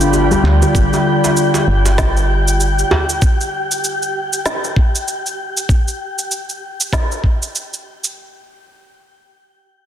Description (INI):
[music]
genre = organic downtempo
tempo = 97 BPM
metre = 4/4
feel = swing 59% on 16ths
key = unclear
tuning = A4 = 436 Hz
[part]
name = felt-muted upright piano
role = accompaniment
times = 0.0-0.8 s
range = F3 to G4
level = -34 LUFS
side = right 2 dB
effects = none
[part]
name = warm analog pad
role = sustained chords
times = 0.0-3.2 s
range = F4 to B5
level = -21 LUFS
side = equal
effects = wide subtle chorus, sidechain pumping, shimmer reverb
[part]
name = handpan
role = arpeggios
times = 0.0-0.7 s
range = D3 to D4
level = -20 LUFS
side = left 2 dB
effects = low-pass filter, digital delay, shimmer reverb
[part]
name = woody FM bass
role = bass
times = 0.0-2.8 s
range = G1 to D2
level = -15 LUFS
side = equal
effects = none
[part]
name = electronic shaker and snare drum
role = drums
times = 0.0-8.1 s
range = none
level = -21 LUFS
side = right 1 dB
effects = none
[part]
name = wind-like tuned noise texture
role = texture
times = 0.0-5.7 s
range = G4 to G5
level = -22 LUFS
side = left 1 dB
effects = built-in reverb, shimmer reverb
[part]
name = djembe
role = percussion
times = 0.1-3.1 s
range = none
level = -20 LUFS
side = right 2 dB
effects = none
[part]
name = electronic kick drum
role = drums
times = 0.7-7.4 s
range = none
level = -14 LUFS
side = equal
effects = none
[sound]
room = moderate echo chamber reverb, RT60 2.1 s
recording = dense, heavily limited modern master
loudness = -14 LUFS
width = side -10 dB against mid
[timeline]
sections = 0.0-8.2 A section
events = none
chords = 0.0 G7